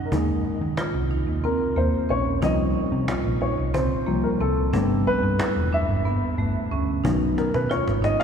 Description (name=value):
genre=progressive instrumental, band music in an uneven meter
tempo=182 BPM (eighths)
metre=7/8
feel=straight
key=unclear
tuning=A4 = 440 Hz
part: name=dark concert grand piano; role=accompaniment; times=0.0-8.2 s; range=Eb3 to F5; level=-25 LUFS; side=left 2 dB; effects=none
part: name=marimba with medium hard mallets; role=arpeggios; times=0.1-8.2 s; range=A3 to F4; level=-28 LUFS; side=right 4 dB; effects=none
part: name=hollow-body short-scale picked electric bass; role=bass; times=0.1-8.2 s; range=Fb1 to Eb3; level=-25 LUFS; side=equal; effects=none
part: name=cajon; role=drums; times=0.1-8.2 s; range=none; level=-33 LUFS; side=left 1 dB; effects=none
room=wet cathedral reverb, RT60 6.3 s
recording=recorded in a church or concert hall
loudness=-21 LUFS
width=side -7 dB against mid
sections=0.1-8.2 A section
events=grand piano solo 0.1-8.2; drum fill 7.4-8.2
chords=0.1 Ebsus4; 2.4 Csus4; 4.7 Gadd9; 7.0 B